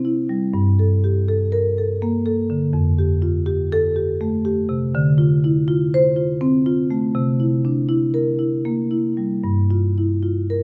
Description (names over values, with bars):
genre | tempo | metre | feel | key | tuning
classical, contemporary piece for solo marimba | 81 BPM | 3/4 | rubato | G dorian | A4 = 439 Hz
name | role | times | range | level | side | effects
marimba with medium mallets | solo | 0.0-10.6 s | F2 to C5 | -19 LUFS | equal | none
room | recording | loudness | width
moderate recital hall reverb, RT60 1.5 s | none | -19 LUFS | mono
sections
0.0-10.6 A section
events
none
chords
0.0 C; 0.5 Gmadd9; 2.7 Fadd9; 4.9 Dm7; 7.2 C7; 9.4 G7(no3)